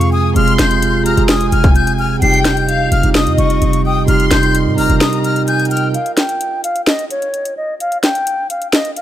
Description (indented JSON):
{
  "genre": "hip hop, trap",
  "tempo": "129 BPM",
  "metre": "4/4",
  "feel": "half-time",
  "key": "unclear",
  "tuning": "A4 = 438 Hz",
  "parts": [
    { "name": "breathy bright concert flute", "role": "melody", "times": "0.0-9.0 s", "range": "Db5 to C7", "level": "-18 LUFS", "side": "left 2 dB", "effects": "low-pass filter, ping-pong delay" },
    { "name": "dark studio violin section", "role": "second line", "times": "0.0-5.9 s", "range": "Eb5 to C6", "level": "-22 LUFS", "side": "left 2 dB", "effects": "ping-pong delay" },
    { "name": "mellow tine electric piano", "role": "accompaniment", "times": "0.0-6.0 s", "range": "C3 to Ab4", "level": "-16 LUFS", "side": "right 4 dB", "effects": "phaser, low-pass filter" },
    { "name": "glass harmonica", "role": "sustained chords", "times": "0.0-5.9 s", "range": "C4 to Eb5", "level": "-25 LUFS", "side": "equal", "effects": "none" },
    { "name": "short 808-style bass", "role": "bass", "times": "0.0-5.0 s", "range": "F1 to Ab2", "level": "-16 LUFS", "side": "equal", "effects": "none" },
    { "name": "trap drum kit", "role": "drums", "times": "0.0-9.0 s", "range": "hi-hat, kick drum, snare drum", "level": "-16 LUFS", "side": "left 1 dB", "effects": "none" }
  ],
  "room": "little or no reverb",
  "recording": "none",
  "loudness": "-12 LUFS",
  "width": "side -12 dB against mid",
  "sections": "0.0-5.9 A section; 5.9-9.0 B section",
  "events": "break 5.0-5.9, 5.9-9.0",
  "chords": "0.0 Fm; 2.2 Cm/F; 5.9 N.C."
}